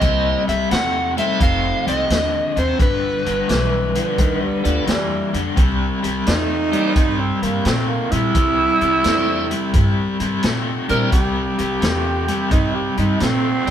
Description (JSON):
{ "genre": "electric blues shuffle", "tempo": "86 BPM", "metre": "4/4", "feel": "swing 67% on 8ths", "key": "C mixolydian", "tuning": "A4 = 440 Hz", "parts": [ { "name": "overdriven slide guitar", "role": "melody", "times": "0.0-4.8 s", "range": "B4 to F#5", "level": "-21 LUFS", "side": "equal", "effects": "none" }, { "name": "tonewheel organ", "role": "accompaniment", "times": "0.0-13.7 s", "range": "E3 to D5", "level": "-26 LUFS", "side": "right 4 dB", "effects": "slow rotary speaker" }, { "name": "overdriven electric guitar", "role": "riff", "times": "0.0-13.7 s", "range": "F2 to A3", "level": "-22 LUFS", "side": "left 3 dB", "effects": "tremolo" }, { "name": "upright bass", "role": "bass", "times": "0.0-13.7 s", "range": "F1 to Bb2", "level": "-24 LUFS", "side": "equal", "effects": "none" }, { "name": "vintage drum kit", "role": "drums", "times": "0.0-13.7 s", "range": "hi-hat, kick drum, snare drum", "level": "-21 LUFS", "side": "equal", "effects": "none" }, { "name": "growling tenor saxophone", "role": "second line", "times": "4.0-13.7 s", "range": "Eb3 to Bb4", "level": "-21 LUFS", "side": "right 3 dB", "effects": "none" } ], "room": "moderate stone room reverb, RT60 1.0 s", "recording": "band playing live in one room", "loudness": "-16 LUFS", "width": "side -10 dB against mid", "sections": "0.0-5.6 A section; 5.6-13.7 B section", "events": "tenor saxophone solo 5.6-13.7", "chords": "0.0 C7; 1.4 F9; 2.8 G9; 5.6 C9" }